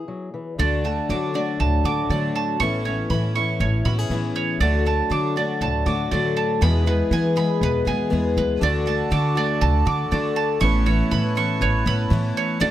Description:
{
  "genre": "folk",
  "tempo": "120 BPM",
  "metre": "4/4",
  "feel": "straight",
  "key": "A major",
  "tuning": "A4 = 440 Hz",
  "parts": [
    { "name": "fingerpicked old ladder-braced acoustic guitar", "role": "accompaniment", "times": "0.0-8.6 s", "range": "A2 to A4", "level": "-26 LUFS", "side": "left 3 dB", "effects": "none" },
    { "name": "picked twelve-string acoustic guitar", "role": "accompaniment", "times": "0.6-12.7 s", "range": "E2 to G#4", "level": "-26 LUFS", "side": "left 4 dB", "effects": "none" },
    { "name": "bowl-back mandolin", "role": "arpeggios", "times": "0.6-12.7 s", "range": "B4 to D6", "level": "-25 LUFS", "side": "right 7 dB", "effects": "digital delay" },
    { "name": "upright bass", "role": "bass", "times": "0.6-12.7 s", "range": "A1 to E3", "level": "-23 LUFS", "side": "equal", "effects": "none" },
    { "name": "felt-muted upright piano", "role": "accompaniment", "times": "8.6-12.7 s", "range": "A1 to D5", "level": "-28 LUFS", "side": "right 1 dB", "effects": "none" },
    { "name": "hand-pumped harmonium", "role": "sustained chords", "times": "8.6-12.7 s", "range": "E4 to A5", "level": "-31 LUFS", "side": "equal", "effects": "none" }
  ],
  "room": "small room ambience",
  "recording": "none",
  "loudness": "-19 LUFS",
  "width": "side -12 dB against mid",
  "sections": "0.6-12.7 A section",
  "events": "build-up 0.6-12.7",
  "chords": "0.0 E; 0.6 D; 2.6 Aadd9; 4.6 D; 6.6 E; 8.6 D; 10.6 Aadd9"
}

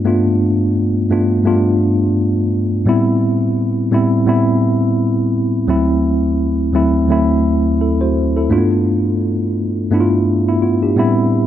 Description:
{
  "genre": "soul",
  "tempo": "85 BPM",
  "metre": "4/4",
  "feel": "swing 58% on 16ths",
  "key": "unclear",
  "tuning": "A4 = 441 Hz",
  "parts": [
    { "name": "mellow tine electric piano", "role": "solo", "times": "0.0-11.5 s", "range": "D2 to C5", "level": "-13 LUFS", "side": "equal", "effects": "medium stereo tremolo" }
  ],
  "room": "moderate plate reverb, RT60 3.0 s",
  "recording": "dark, warm production",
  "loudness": "-13 LUFS",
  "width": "side -11 dB against mid",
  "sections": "0.0-8.5 A section; 8.5-11.5 B section",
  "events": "none",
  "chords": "0.0 G7; 2.9 Am9; 5.7 D9; 8.5 G7"
}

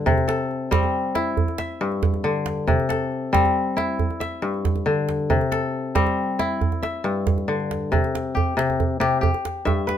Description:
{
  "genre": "west african traditional, West African string and xylophone music",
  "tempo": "92 BPM (dotted quarters)",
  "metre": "12/8",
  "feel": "straight",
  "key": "C major",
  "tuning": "A4 = 441 Hz",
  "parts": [
    { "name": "kora", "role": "arpeggios", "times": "0.0-10.0 s", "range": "G2 to E5", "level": "-22 LUFS", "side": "left 3 dB", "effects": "none" },
    { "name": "djembe", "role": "percussion", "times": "0.1-10.0 s", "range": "none", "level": "-24 LUFS", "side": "right 4 dB", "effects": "none" }
  ],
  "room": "light reverb",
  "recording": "minimal, uncompressed stereo recording",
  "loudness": "-20 LUFS",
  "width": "side -9 dB against mid",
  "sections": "0.0-7.9 A section; 7.9-10.0 B section",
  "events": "none",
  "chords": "0.1 C; 1.4 G5; 2.7 C; 4.0 G5; 5.3 C; 6.6 G5; 7.9 C5; 9.2 G"
}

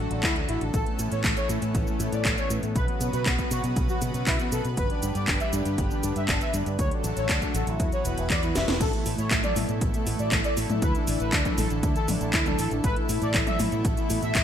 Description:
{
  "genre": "italo disco",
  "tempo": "119 BPM",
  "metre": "4/4",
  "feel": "straight",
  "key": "A mixolydian",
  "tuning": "A4 = 439 Hz",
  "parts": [
    { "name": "analog synth brass", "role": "melody", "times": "0.0-14.4 s", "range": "A3 to E5", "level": "-31 LUFS", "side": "equal", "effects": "chorus, digital delay" },
    { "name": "lush unison pad", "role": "sustained chords", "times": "0.0-14.4 s", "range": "B2 to B4", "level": "-32 LUFS", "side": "equal", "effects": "chorus" },
    { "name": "fingered electric bass with an envelope filter", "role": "bass", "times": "0.0-14.4 s", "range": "E1 to B2", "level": "-29 LUFS", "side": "equal", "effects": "none" },
    { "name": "house drum kit", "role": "drums", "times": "0.1-14.4 s", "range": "cabasa, crash cymbal, handclaps, hi-hat, snare drum, toms", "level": "-29 LUFS", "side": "left 1 dB", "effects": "overdrive, gated reverb" },
    { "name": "electronic kick drum", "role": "drums", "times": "0.2-14.4 s", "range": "none", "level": "-29 LUFS", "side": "equal", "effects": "overdrive" }
  ],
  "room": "light reverb",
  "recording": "bright 1980s-style digital production",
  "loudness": "-23 LUFS",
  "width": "side -9 dB against mid",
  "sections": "0.0-8.8 A section; 8.8-14.4 B section",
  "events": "drum fill 8.6",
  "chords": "0.0 D; 0.7 Aadd9; 2.8 Bsus2; 4.8 G; 6.8 D; 7.8 Esus2; 8.8 Asus2; 10.8 Dsus2; 12.8 Asus2"
}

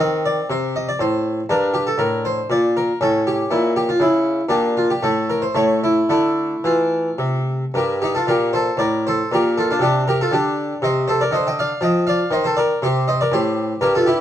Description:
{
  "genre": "classical, baroque-style suite movement for harpsichord",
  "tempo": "107-123 BPM",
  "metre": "3/4",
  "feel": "rubato",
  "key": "D minor",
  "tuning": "A4 = 441 Hz",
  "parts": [
    { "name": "harpsichord", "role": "solo", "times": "0.0-14.2 s", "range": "G2 to G5", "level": "-16 LUFS", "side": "equal", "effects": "none" }
  ],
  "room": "moderate studio reverb, RT60 0.7 s",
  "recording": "worn, warbling old tape, cassette tape, warbly pitch drift",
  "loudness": "-16 LUFS",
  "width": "side -11 dB against mid",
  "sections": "0.0-7.7 A section; 7.7-14.2 A section",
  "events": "none",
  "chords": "0.0 Cm; 1.5 Gmadd9; 3.0 A; 4.5 Bb; 5.0 N.C.; 6.1 Dm; 7.7 Gm; 9.3 Gm/Bb; 10.8 Cm"
}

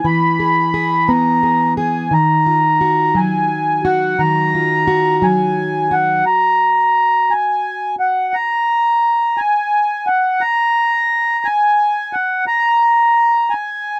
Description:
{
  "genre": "folk",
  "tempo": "58 BPM (dotted quarters)",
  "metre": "6/8",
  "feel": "straight",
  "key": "unclear",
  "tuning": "A4 = 440 Hz",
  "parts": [
    { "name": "mellow accordion", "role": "melody", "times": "0.0-14.0 s", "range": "F#5 to B5", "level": "-16 LUFS", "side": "equal", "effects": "none" },
    { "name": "fingerpicked plugged-in steel-string acoustic guitar", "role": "accompaniment", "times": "0.0-8.3 s", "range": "D#3 to G#4", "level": "-21 LUFS", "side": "equal", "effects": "none" }
  ],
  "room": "little or no reverb",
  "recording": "dry, close 1970s-style studio recording",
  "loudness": "-15 LUFS",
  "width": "mono",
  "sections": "0.0-14.0 A section",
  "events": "build-up 0.0-14.0",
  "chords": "0.0 E; 2.1 D#madd9; 6.3 N.C."
}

